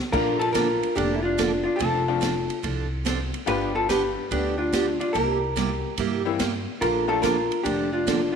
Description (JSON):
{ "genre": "country, western swing", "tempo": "144 BPM", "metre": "4/4", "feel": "swing 66% on 8ths", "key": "unclear", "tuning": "A4 = 440 Hz", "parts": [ { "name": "vintage hollow-body jazz guitar", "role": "melody", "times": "0.1-8.4 s", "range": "D4 to B4", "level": "-24 LUFS", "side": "left 1 dB", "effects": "none" }, { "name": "picked steel-string acoustic guitar", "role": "accompaniment", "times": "0.1-8.2 s", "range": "C3 to A4", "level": "-28 LUFS", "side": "right 8 dB", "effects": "none" }, { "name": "tack piano", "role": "accompaniment", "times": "0.1-7.2 s", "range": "E3 to F4", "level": "-32 LUFS", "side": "left 11 dB", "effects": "none" }, { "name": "upright bass", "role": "bass", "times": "0.1-8.3 s", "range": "F1 to G2", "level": "-31 LUFS", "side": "equal", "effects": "none" }, { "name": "swinging big-band drum kit", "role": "drums", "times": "0.1-8.2 s", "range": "crash cymbal, hi-hat, kick drum, ride cymbal, snare drum", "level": "-32 LUFS", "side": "left 1 dB", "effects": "none" } ], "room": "moderate plate reverb, RT60 1.6 s, studio reverb", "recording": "1960s-style stereo with parts hard left and right", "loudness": "-22 LUFS", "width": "side -6 dB against mid", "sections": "0.1-8.4 A section", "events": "none", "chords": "0.1 Bbmaj7; 1.8 F6; 3.5 G7; 5.1 C7; 6.8 Bbmaj7", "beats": "| 0.13 0.54 0.96 1.38 | 1.80 2.22 2.63 3.05 | 3.47 3.89 4.31 4.72 | 5.14 5.56 5.98 6.40 | 6.81 7.23 7.65 8.07" }